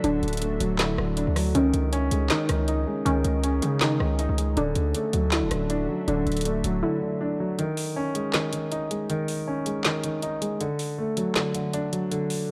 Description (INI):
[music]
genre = hip hop, trap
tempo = 159 BPM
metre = 4/4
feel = half-time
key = C# minor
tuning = A4 = 439 Hz
[part]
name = dark concert grand piano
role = accompaniment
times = 0.0-12.5 s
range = D3 to D#4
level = -29 LUFS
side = equal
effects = low-pass filter
[part]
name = deep dark ambient pad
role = sustained chords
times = 0.0-7.6 s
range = C#4 to E5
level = -40 LUFS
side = equal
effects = chorus, built-in reverb
[part]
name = warbly dusty pluck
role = arpeggios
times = 0.0-7.6 s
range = C#4 to E4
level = -31 LUFS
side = equal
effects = chorus, low-pass filter, tape echo
[part]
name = hard-hitting 808-style bass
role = bass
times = 0.0-6.8 s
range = D1 to C#3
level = -29 LUFS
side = equal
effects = none
[part]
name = trap drum kit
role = drums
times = 0.0-12.4 s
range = handclaps, hi-hat, rim click, snare drum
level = -31 LUFS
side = equal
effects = none
[sound]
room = light reverb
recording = dark, warm production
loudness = -26 LUFS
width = mono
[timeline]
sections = 0.0-7.6 A section; 7.6-12.5 B section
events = drums muted 6.8-7.6; break 7.6-12.5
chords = 0.0 Dadd9; 1.5 C#sus2; 4.6 Dadd9; 7.6 C#sus2; 10.6 D